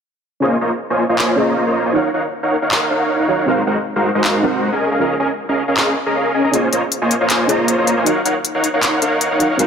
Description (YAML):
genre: future bass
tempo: 157 BPM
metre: 4/4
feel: half-time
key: Bb minor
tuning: A4 = 440 Hz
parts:
  - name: soft round pluck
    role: accompaniment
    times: 0.4-9.7 s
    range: C4 to F5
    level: -22 LUFS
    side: right 1 dB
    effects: lush chorus, dub echo
  - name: supersaw chords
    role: riff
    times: 0.4-9.7 s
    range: Ab3 to Bb5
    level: -16 LUFS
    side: equal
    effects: analog chorus, cassette tape, low-pass filter
  - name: trap drum kit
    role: drums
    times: 1.2-9.7 s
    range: handclaps, hi-hat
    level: -20 LUFS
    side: left 1 dB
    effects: none
room: moderate lush hall reverb, RT60 2.8 s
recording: none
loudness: -14 LUFS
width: side -7 dB against mid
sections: 0.4-9.7 A section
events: none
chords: 0.4 Bbm11; 1.9 Ebm9; 3.5 Ab13; 4.8 Db69; 6.5 Bbm11; 8.1 Ebm9